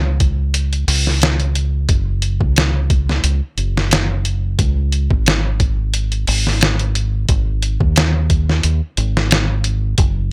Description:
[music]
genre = trip hop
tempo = 89 BPM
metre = 4/4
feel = swing 54% on 16ths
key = unclear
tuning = A4 = 440 Hz
[part]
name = deep dub fingered electric bass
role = bass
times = 0.0-10.3 s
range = F#1 to D#2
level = -20 LUFS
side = equal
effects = none
[part]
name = trip hop sampler-style drum kit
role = drums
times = 0.2-10.2 s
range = hi-hat, kick drum, snare drum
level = -19 LUFS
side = equal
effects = none
[sound]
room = little or no reverb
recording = none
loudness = -17 LUFS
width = mono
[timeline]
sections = 0.0-10.3 A section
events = none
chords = none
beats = 0.54 1.22 | 1.89 2.57 3.24 3.92 | 4.59 5.26 5.94 6.61 | 7.29 7.96 8.63 9.31 | 9.98

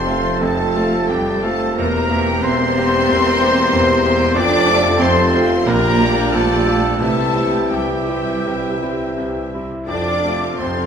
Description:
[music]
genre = classical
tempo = 81-96 BPM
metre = 4/4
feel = rubato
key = F major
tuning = A4 = 441 Hz
[part]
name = clear concert grand piano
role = melody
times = 0.0-10.9 s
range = E1 to G4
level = -20 LUFS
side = equal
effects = none
[part]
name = warm symphonic violin section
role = melody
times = 0.0-10.9 s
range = G5 to D6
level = -28 LUFS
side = left 3 dB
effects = none
[part]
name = clear clarinet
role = second line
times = 0.0-10.9 s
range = G4 to D5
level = -26 LUFS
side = left 3 dB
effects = none
[part]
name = mellow hollow concert flute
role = second line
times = 0.0-10.9 s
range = G5 to D6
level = -27 LUFS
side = left 2 dB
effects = none
[part]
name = warm oboe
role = second line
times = 0.0-10.9 s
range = G5 to Bb5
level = -29 LUFS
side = right 1 dB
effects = none
[part]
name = warm symphonic violin section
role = second line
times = 0.0-10.9 s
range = G5 to D6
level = -28 LUFS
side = left 3 dB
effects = none
[part]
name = dark bassoon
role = accompaniment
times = 0.0-10.9 s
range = E3 to A3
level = -28 LUFS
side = right 2 dB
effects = none
[part]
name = warm symphonic viola section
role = accompaniment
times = 0.0-10.9 s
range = F4 to G5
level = -28 LUFS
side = right 3 dB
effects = none
[part]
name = mellow French horn section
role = sustained chords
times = 0.0-10.1 s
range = E4 to Bb4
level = -24 LUFS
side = left 1 dB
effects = none
[part]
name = mellow trumpet section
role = stabs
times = 0.0-10.9 s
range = G4 to D5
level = -23 LUFS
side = left 1 dB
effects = none
[part]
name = mellow tuba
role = bass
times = 0.0-10.9 s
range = E1 to C2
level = -27 LUFS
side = right 2 dB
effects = none
[part]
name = warm symphonic cello section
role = bass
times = 0.0-10.9 s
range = G3 to D4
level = -23 LUFS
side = right 2 dB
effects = none
[part]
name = warm symphonic double bass section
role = bass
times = 0.0-10.9 s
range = Bb1 to F2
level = -28 LUFS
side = right 3 dB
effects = none
[part]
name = timpani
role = percussion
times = 7.0-8.0 s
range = none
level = barely audible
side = none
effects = none
[sound]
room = wet recital hall reverb, RT60 1.4 s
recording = minimal, uncompressed stereo recording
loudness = -14 LUFS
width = side -7 dB against mid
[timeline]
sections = 0.0-10.9 A section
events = none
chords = 0.0 F; 1.8 C7/E; 4.4 F; 5.7 Bb6; 7.0 C; 9.9 F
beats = 0.40 1.09 | 1.77 2.44 3.09 3.72 | 4.35 5.01 5.67 6.33 | 7.00 7.71 8.45 9.16 | 9.87 10.58

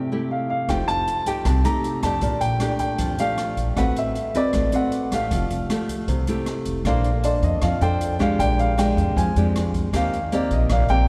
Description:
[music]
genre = bossa nova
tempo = 156 BPM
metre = 4/4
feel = straight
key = F major, Bb major from 6.8 s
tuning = A4 = 440 Hz
[part]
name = dark baby grand piano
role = melody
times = 0.0-11.1 s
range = D5 to Bb5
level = -27 LUFS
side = equal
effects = none
[part]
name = nylon-string guitar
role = accompaniment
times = 0.0-11.1 s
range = Bb2 to C5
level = -27 LUFS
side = equal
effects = none
[part]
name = upright bass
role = bass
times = 0.7-11.1 s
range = F1 to F2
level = -26 LUFS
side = equal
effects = none
[part]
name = open jazz drum kit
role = drums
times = 0.7-11.0 s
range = hi-hat, kick drum, rim click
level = -32 LUFS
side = equal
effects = none
[sound]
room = wet cathedral reverb, RT60 4.3 s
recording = recorded in a church or concert hall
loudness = -22 LUFS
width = mono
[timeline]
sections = 0.0-6.8 A section; 6.8-11.1 B section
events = none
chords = 0.0 Fmaj9; 0.7 F9; 2.2 Bb6; 3.8 D13/A; 5.3 Fmaj9; 6.8 Bbmaj9; 8.4 Bb6; 9.9 Eb6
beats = 0.30 | 0.69 1.07 1.46 1.84 | 2.23 2.61 3.00 3.38 | 3.77 4.15 4.54 4.92 | 5.31 5.70 6.08 6.46 | 6.85 7.24 7.62 8.01 | 8.39 8.78 9.16 9.55 | 9.93 10.32 10.70

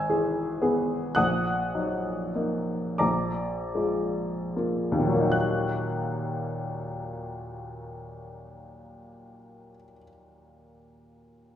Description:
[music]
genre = classical, romantic nocturne for solo piano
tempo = 23-38 BPM (dotted quarters)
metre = 12/8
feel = rubato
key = Eb minor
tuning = A4 = 440 Hz
[part]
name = warm baby grand piano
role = solo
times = 0.0-11.6 s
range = G#1 to G#6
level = -26 LUFS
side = left 1 dB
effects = none
[sound]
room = wet large studio reverb, RT60 1.2 s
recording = heard from further back in the room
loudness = -25 LUFS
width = side -10 dB against mid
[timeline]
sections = 0.0-5.3 A section; 5.3-11.6 B section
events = slowing down 0.0-5.3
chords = 0.0 E/G#; 1.2 Ebm/Bb; 3.0 Bb7; 5.3 Ebm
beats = 1.16 3.00 | 5.33 7.42 9.53

